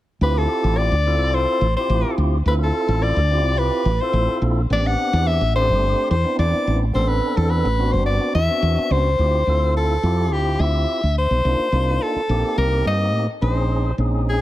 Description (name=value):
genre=electric jazz fusion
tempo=107 BPM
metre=4/4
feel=straight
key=D dorian, D phrygian from 9.2 s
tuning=A4 = 440 Hz
part: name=bright soprano saxophone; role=melody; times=0.2-14.4 s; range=G4 to F#5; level=-22 LUFS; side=left 2 dB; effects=tape echo
part: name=tonewheel organ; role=accompaniment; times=0.2-14.4 s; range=A3 to A4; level=-25 LUFS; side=right 1 dB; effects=overdrive, fast rotary speaker
part: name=woody fretless electric bass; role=bass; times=0.2-14.4 s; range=G1 to A2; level=-19 LUFS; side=equal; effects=none
room=light reverb, studio reverb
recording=none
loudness=-17 LUFS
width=side -14 dB against mid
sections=0.2-9.2 A section; 9.2-14.4 B section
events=none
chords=0.2 Dm11; 4.7 Am11; 9.2 Dm11; 11.4 Cm11; 13.4 Bbm11